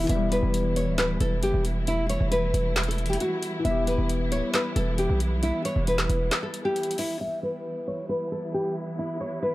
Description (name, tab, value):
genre	hip hop, trap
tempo	135 BPM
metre	4/4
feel	half-time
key	E dorian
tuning	A4 = 440 Hz
part	nylon-string guitar	melody	0.0-9.5 s	E4 to E5	-28 LUFS	equal	low-pass filter
part	dark concert grand piano	accompaniment	0.0-7.2 s	E3 to G4	-33 LUFS	left 4 dB	none
part	dark symphonic string section	sustained chords	0.0-9.5 s	E3 to E4	-33 LUFS	right 1 dB	low-pass filter
part	hard-hitting 808-style bass	bass	0.0-6.3 s	D1 to B1	-26 LUFS	equal	none
part	trap drum kit	drums	0.1-7.1 s	handclaps, hi-hat, snare drum	-30 LUFS	equal	none
room	small room ambience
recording	dark, warm production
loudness	-24 LUFS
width	side -17 dB against mid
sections	0.0-7.2 A section; 7.2-9.5 B section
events	break 6.3-7.2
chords	0.0 Em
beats	| 0.09 0.54 0.98 1.43 | 1.87 2.32 2.76 3.21 | 3.65 4.09 4.54 4.98 | 5.43 5.87 6.32 6.76 | 7.21 7.65 8.09 8.54 | 8.98 9.43